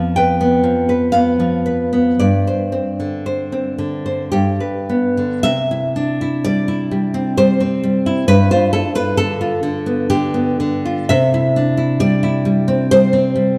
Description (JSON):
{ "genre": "romantic piece for solo classical guitar", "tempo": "49-69 BPM", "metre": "3/4", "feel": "rubato", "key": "C major", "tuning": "A4 = 440 Hz", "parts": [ { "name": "nylon-string guitar", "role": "solo", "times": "0.0-13.6 s", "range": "F2 to A5", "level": "-17 LUFS", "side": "equal", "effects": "none" } ], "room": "wet concert hall reverb, RT60 2.0 s", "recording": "dark, warm production", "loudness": "-17 LUFS", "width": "mono", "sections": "0.0-5.5 A section; 5.5-13.6 B section", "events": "none", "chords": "0.0 G7/F; 2.2 Gsus4; 4.3 G; 5.5 C; 8.3 G7; 11.1 C" }